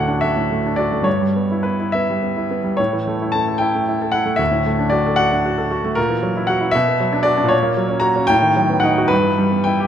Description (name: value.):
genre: classical, romantic character piece for solo piano.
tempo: 65-78 BPM (dotted quarters).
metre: 6/8.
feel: rubato.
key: D major, B minor from 6.0 s.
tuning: A4 = 440 Hz.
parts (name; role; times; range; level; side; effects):
clear grand piano; solo; 0.0-9.9 s; D2 to A#5; -16 LUFS; equal; none.
room: moderate concert hall reverb, RT60 1.9 s.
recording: none.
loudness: -16 LUFS.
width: side -9 dB against mid.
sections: 0.0-9.9 A section.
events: none.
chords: 0.0 D; 1.1 Em/G; 2.8 A; 4.4 D; 6.0 F#7/A#; 6.7 Bm; 7.5 F#/A#; 8.3 B7/A; 9.1 Em/G.